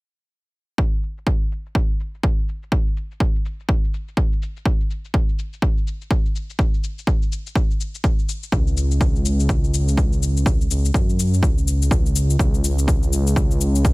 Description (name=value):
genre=afro house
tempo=124 BPM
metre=4/4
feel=swing 59% on 16ths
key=unclear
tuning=A4 = 438 Hz
part: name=electronic kick drum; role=drums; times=0.8-13.9 s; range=none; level=-19 LUFS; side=equal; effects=none
part: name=shaker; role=drums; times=0.8-13.9 s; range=none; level=-30 LUFS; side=left 7 dB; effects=low-pass filter on perc
part: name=dark detuned saw bass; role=bass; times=8.5-13.9 s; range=C#2 to F#2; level=-19 LUFS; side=equal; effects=sidechain pumping
room=little or no reverb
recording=echo-heavy mix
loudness=-18 LUFS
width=side -23 dB against mid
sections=0.8-13.9 A section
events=none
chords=none